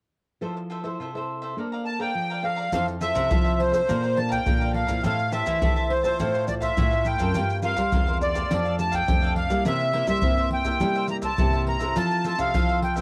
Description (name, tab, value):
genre	samba and choro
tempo	104 BPM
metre	4/4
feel	straight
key	F major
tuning	A4 = 440 Hz
part	cavaquinho	accompaniment	0.4-13.0 s	D4 to Bb5	-36 LUFS	equal	cassette tape
part	nylon-string guitar	accompaniment	0.4-13.0 s	G2 to C5	-36 LUFS	equal	cassette tape
part	accordion	melody	1.9-13.0 s	C5 to Bb5	-27 LUFS	equal	light tremolo tuning, cassette tape
part	nylon-string guitar	bass	2.7-13.0 s	E2 to C4	-30 LUFS	equal	none
part	maracas, surdo and pandeiro	percussion	2.7-13.0 s	none	-29 LUFS	equal	none
room	light reverb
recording	home recording on cassette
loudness	-24 LUFS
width	mono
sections	0.4-2.7 A section; 2.7-13.0 B section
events	none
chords	0.4 Fmaj7; 1.6 Bbmaj9; 2.7 Fmaj7; 3.9 Bbmaj9; 5.0 Am7; 6.2 Fmaj7/A; 7.3 C7sus4/G; 8.5 F69; 9.7 C7; 12.0 Fmaj7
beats	| 0.41 0.99 1.57 2.15 | 2.73 3.31 3.88 4.46 | 5.04 5.62 6.19 6.77 | 7.35 7.92 8.50 9.08 | 9.66 10.23 10.81 11.39 | 11.96 12.54